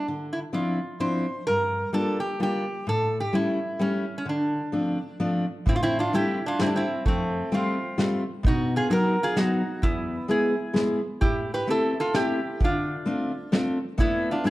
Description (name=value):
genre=musette waltz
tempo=129 BPM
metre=3/4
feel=straight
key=D minor, A minor from 5.7 s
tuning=A4 = 444 Hz
part: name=metal-body resonator slide guitar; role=melody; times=0.0-14.5 s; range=A3 to C5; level=-26 LUFS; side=right 1 dB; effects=none
part: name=fingerpicked steel-string acoustic guitar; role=accompaniment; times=0.1-14.5 s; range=E2 to G#4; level=-26 LUFS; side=left 1 dB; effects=none
part: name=soft brush drum kit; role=drums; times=5.7-14.5 s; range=hi-hat, kick drum, snare drum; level=-26 LUFS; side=right 1 dB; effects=none
room=moderate recital hall reverb, RT60 1.7 s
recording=dark, warm production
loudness=-23 LUFS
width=side -17 dB against mid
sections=0.0-5.7 A section; 5.7-14.5 B section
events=none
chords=0.1 Dm9; 1.5 Gm7; 2.9 A7; 4.3 Dm7; 5.7 Am7; 7.1 Fadd9; 8.4 B; 9.8 E; 11.2 Am7; 12.6 Dm7; 14.0 E7sus4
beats=| 0.07 0.54 1.01 | 1.47 1.94 2.40 | 2.87 3.33 3.79 | 4.26 4.72 5.19 | 5.66 6.13 6.59 | 7.06 7.52 7.99 | 8.45 8.91 9.37 | 9.83 10.29 10.76 | 11.22 11.69 12.15 | 12.62 13.08 13.54 | 13.99 14.45